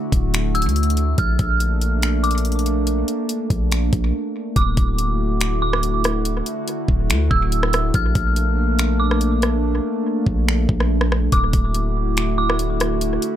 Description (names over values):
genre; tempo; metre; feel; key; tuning
hip hop, atmospheric cloud-rap; 142 BPM; 4/4; half-time; unclear; A4 = 439 Hz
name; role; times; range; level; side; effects
warbly tape-like pad; sustained chords; 0.0-13.4 s; D3 to F#4; -23 LUFS; equal; chorus, built-in reverb, sidechain pumping
long sustained 808-style bass; bass; 0.1-13.2 s; D1 to D2; -20 LUFS; equal; none
trap drum kit; drums; 0.1-13.3 s; finger snaps, hi-hat, kick drum, rim click; -22 LUFS; equal; none
dark detuned synth bell; melody; 0.5-12.6 s; D6 to F6; -25 LUFS; right 1 dB; chorus, phaser, low-pass filter, analog delay
room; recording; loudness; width
little or no reverb; echo-heavy mix; -17 LUFS; side -11 dB against mid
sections
0.0-4.6 A section; 4.6-13.4 B section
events
break 4.1-4.6; hi-hats muted 9.6-11.3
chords
0.0 Dadd9; 1.2 Bbmaj7; 4.6 Dadd9; 7.9 Bbmaj7; 11.3 Dadd9